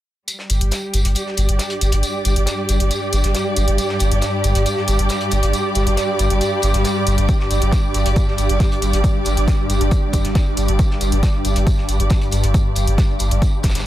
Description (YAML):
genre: driving peak-time techno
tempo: 137 BPM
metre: 4/4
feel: straight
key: unclear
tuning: A4 = 440 Hz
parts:
  - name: swarming drone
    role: drone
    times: 1.4-13.9 s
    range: G2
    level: -24 LUFS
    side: equal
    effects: built-in reverb, phaser, sidechain pumping
  - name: electronic hi-hat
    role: drums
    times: 0.3-13.8 s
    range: none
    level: -26 LUFS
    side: left 1 dB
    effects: overdrive
  - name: warm soul drum kit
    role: drums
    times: 0.3-13.9 s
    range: hi-hat, snare drum, tambourine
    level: -30 LUFS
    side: left 1 dB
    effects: high-pass filter on hats, high-pass filter on snare, high-pass filter on perc, high-pass filter on room
  - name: rich studio string section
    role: texture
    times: 0.3-13.9 s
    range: G3 to D6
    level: -23 LUFS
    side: right 1 dB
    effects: sidechain pumping
  - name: saturated sub bass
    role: bass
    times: 0.5-13.9 s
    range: G1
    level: -18 LUFS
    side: equal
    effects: sidechain pumping, low-pass filter
  - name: electronic kick drum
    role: drums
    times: 7.3-13.7 s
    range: none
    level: -17 LUFS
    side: equal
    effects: overdrive
room: light reverb, studio reverb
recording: none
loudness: -15 LUFS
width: side -14 dB against mid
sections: 0.3-13.9 A section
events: none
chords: 0.3 G5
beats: | 0.28 0.72 1.16 1.59 | 2.03 2.47 2.91 3.35 | 3.78 4.22 4.66 5.10 | 5.54 5.97 6.41 6.85 | 7.29 7.72 8.16 8.60 | 9.04 9.48 9.91 10.35 | 10.79 11.23 11.67 12.11 | 12.54 12.98 13.42 13.86